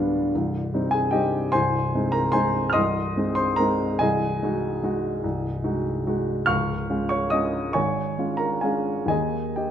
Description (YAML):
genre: classical, piano waltz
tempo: 126-155 BPM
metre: 3/4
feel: rubato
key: Ab major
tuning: A4 = 441 Hz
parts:
  - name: warm upright piano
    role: solo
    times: 0.0-9.7 s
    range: C1 to F6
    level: -22 LUFS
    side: equal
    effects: none
room: moderate recital hall reverb, RT60 1.6 s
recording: close, detailed microphones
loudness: -22 LUFS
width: side -9 dB against mid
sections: 0.0-9.7 A section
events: none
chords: 0.3 Cm; 1.5 Ab/C; 4.0 Ab7/C; 6.5 Db; 9.1 Eb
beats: | 0.33 0.72 1.14 | 1.54 1.93 2.35 | 2.76 3.17 3.59 | 4.00 4.41 4.83 | 5.23 5.64 6.07 | 6.49 6.91 7.34 | 7.76 8.18 8.64 | 9.11 9.58